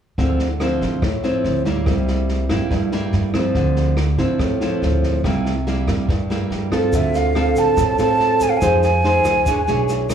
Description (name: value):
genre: bossa nova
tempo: 142 BPM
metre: 4/4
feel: straight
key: D minor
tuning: A4 = 440 Hz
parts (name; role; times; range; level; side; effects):
- nylon-string guitar; accompaniment; 0.2-10.1 s; G2 to C#5; -19 LUFS; equal; plate reverb, slapback echo
- upright bass; bass; 0.2-10.1 s; A1 to G2; -22 LUFS; equal; none
- open jazz drum kit; drums; 0.2-10.1 s; kick drum, rim click, snare drum; -25 LUFS; right 1 dB; none
- breathy hollow jazz flute; melody; 6.9-10.1 s; E5 to A5; -19 LUFS; right 4 dB; plate reverb, slapback echo
- egg shaker; percussion; 6.9-10.1 s; none; -38 LUFS; left 2 dB; none
room: moderate club reverb, RT60 0.6 s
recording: live gig heard through the venue's PA, club reverb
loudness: -16 LUFS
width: side -8 dB against mid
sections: 0.2-6.9 A section; 6.9-10.1 B section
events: none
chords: 0.2 Dm9; 1.9 C7; 3.6 Dm9; 5.2 C7; 6.9 Dm7; 8.6 Fm7; 9.5 E6